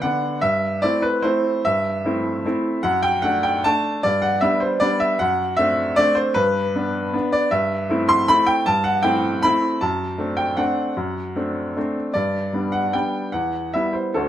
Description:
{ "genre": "classical, piano waltz", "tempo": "153 BPM", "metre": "3/4", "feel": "uneven beats, rubato", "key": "G major", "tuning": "A4 = 440 Hz", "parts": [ { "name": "bright upright piano", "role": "solo", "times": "0.0-14.3 s", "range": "D2 to C6", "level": "-18 LUFS", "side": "equal", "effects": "none" } ], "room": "light reverb", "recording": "lossy compression artefacts", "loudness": "-18 LUFS", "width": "side -11 dB against mid", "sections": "0.0-14.3 A section", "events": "none", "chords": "0.4 Am7/G; 2.8 D/F#; 4.0 G; 5.2 D7/F#; 6.4 G; 7.5 Am7/G; 9.8 D7/F#; 12.1 G; 13.3 Em" }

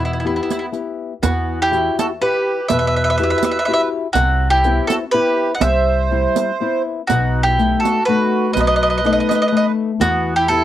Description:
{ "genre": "italian folk, Italian serenade", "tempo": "123 BPM", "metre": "3/4", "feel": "rubato", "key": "E harmonic minor", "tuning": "A4 = 440 Hz", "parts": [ { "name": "bowl-back mandolin", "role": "melody", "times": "0.0-10.6 s", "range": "E4 to F#5", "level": "-18 LUFS", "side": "equal", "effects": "cassette tape" }, { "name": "accordion", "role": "second line", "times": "0.0-10.6 s", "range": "B3 to D#5", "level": "-23 LUFS", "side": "right 7 dB", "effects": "light tremolo tuning, cassette tape" }, { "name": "nylon-string guitar", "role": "accompaniment", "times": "0.0-10.6 s", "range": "B2 to F#5", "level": "-21 LUFS", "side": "left 6 dB", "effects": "cassette tape" }, { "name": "upright bass", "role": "bass", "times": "0.0-10.6 s", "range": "B1 to E2", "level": "-21 LUFS", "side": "equal", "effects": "none" }, { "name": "riq", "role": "percussion", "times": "0.5-10.6 s", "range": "none", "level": "-22 LUFS", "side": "right 9 dB", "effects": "none" } ], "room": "moderate studio reverb, RT60 0.6 s", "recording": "home recording on cassette", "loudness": "-15 LUFS", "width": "side -12 dB against mid", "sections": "0.0-1.2 A section; 1.2-10.6 A section", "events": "none", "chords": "0.0 Em; 1.2 Emadd9; 4.2 Cmaj7; 7.1 B7; 10.0 Em" }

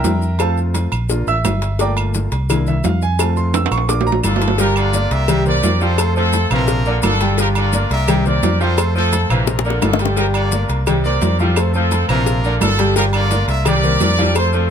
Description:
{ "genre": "latin, salsa", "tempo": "172 BPM", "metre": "4/4", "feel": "straight", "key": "F major", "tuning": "A4 = 440 Hz", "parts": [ { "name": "clear grand piano", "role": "accompaniment", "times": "0.0-14.7 s", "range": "C3 to E6", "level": "-21 LUFS", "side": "equal", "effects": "none" }, { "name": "fingered electric bass", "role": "bass", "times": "0.0-14.7 s", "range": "G1 to F2", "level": "-18 LUFS", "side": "equal", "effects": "none" }, { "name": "congas", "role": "percussion", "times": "0.0-14.7 s", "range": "none", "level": "-24 LUFS", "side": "left 4 dB", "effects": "none" }, { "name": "cowbell and bongos", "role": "percussion", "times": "0.0-14.5 s", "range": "none", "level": "-24 LUFS", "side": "left 8 dB", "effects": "none" }, { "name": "maracas", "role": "percussion", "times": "0.0-14.7 s", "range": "none", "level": "-29 LUFS", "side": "left 6 dB", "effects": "none" }, { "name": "timbales and agogo bells", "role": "percussion", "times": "0.0-14.5 s", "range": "none", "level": "-25 LUFS", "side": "right 7 dB", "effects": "none" }, { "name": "claves", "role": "percussion", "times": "0.4-14.5 s", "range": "none", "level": "-27 LUFS", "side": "right 5 dB", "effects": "none" }, { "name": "bright trumpet section", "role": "melody", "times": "4.2-14.7 s", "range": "A3 to E5", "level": "-20 LUFS", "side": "right 1 dB", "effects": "none" }, { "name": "bright saxophone section", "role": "second line", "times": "4.6-14.7 s", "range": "C3 to G3", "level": "-26 LUFS", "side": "equal", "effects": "none" } ], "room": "little or no reverb", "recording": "close, detailed microphones", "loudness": "-14 LUFS", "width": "side -8 dB against mid", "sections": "0.0-4.6 A section; 4.6-14.7 B section", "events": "grand piano solo 0.0-4.6; drum fill 3.5-4.6, 9.5-10.2", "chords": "0.4 F; 1.1 Bb; 1.8 Gm7; 2.5 C7; 3.2 F; 3.9 Bb; 4.6 Gm7; 5.3 C5; 6.0 F; 6.7 Bb; 7.4 Gm7; 8.1 C5; 8.8 F; 9.5 Bb; 10.2 Gm7; 10.9 C5; 11.6 F; 12.3 Bb; 13.0 Gm7; 13.7 C5" }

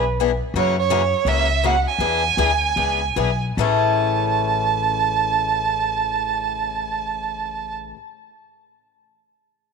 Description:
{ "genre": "acoustic string swing (jazz manouche)", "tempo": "142-168 BPM", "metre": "4/4", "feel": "swing 61% on 8ths", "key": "A major", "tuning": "A4 = 436 Hz", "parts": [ { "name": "picked swing-style acoustic guitar", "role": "accompaniment", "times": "0.0-8.0 s", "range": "A2 to G#4", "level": "-24 LUFS", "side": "left 14 dB", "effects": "none" }, { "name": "upright bass", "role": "bass", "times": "0.0-7.9 s", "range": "A1 to F#2", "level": "-26 LUFS", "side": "left 2 dB", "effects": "none" }, { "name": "rich violin", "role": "melody", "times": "0.6-7.7 s", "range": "C#5 to A5", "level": "-20 LUFS", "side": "right 8 dB", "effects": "none" } ], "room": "moderate echo chamber reverb, RT60 2.7 s", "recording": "1960s-style stereo with parts hard left and right", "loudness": "-18 LUFS", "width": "side -5 dB against mid", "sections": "0.0-3.6 A section; 3.6-7.0 B section", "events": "slowing down 0.5-3.6", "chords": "0.0 E7; 0.5 F#7; 2.0 E7; 3.6 A" }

